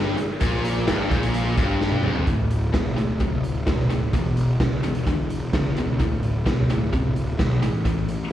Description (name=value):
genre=classic rock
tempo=129 BPM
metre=4/4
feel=straight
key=unclear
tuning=A4 = 439 Hz
part: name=tight distorted guitar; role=riff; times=0.0-8.3 s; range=D2 to E3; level=-24 LUFS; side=equal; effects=distortion, slapback echo
part: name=fuzz picked electric bass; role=bass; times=0.0-8.3 s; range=D1 to C#2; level=-26 LUFS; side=equal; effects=overdrive
part: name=raw garage drum kit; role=drums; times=0.2-8.2 s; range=hi-hat, kick drum, snare drum, toms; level=-25 LUFS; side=equal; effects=none
room=light reverb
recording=live gig heard through the venue's PA, recital hall reverb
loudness=-20 LUFS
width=side -12 dB against mid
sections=0.0-2.3 A section; 2.3-8.3 B section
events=drum fill 1.8-2.3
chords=0.0 G5; 2.3 D5; 4.1 E5; 6.0 D5; 7.6 A5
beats=| 0.42 0.88 1.35 1.81 | 2.28 2.74 3.21 3.67 | 4.14 4.60 5.07 5.53 | 6.00 6.46 6.92 7.39 | 7.85